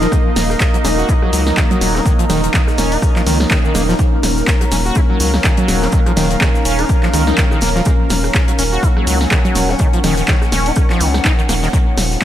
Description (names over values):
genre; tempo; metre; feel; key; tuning
acid house; 124 BPM; 4/4; swing 56% on 16ths; Eb minor; A4 = 440 Hz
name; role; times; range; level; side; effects
warm analog pad; sustained chords; 0.0-12.2 s; F3 to Eb5; -22 LUFS; left 1 dB; chorus, tremolo, sidechain pumping
overdriven acid bass; riff; 0.0-11.8 s; Eb3 to Gb4; -21 LUFS; equal; tube saturation, wide subtle chorus, cassette tape, sidechain pumping, diffuse ambient delay
round analog bass; bass; 0.0-12.2 s; Eb1 to Db2; -18 LUFS; equal; sidechain pumping
deep reggae drum kit; drums; 0.0-12.2 s; hi-hat, shaker, snare drum; -30 LUFS; left 1 dB; none
punchy analog drum machine; drums; 0.0-12.2 s; congas, handclaps, hi-hat, rim click, shaker, snare drum; -19 LUFS; equal; none
warbly tape-like pad; texture; 0.0-12.2 s; Eb4 to Bb5; -23 LUFS; equal; chorus, built-in reverb, sidechain pumping
electronic kick drum; drums; 0.1-12.2 s; none; -15 LUFS; equal; none
room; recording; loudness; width
light reverb, digital ambience; none; -12 LUFS; side -11 dB against mid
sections
0.0-12.2 A section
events
none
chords
0.0 Eb5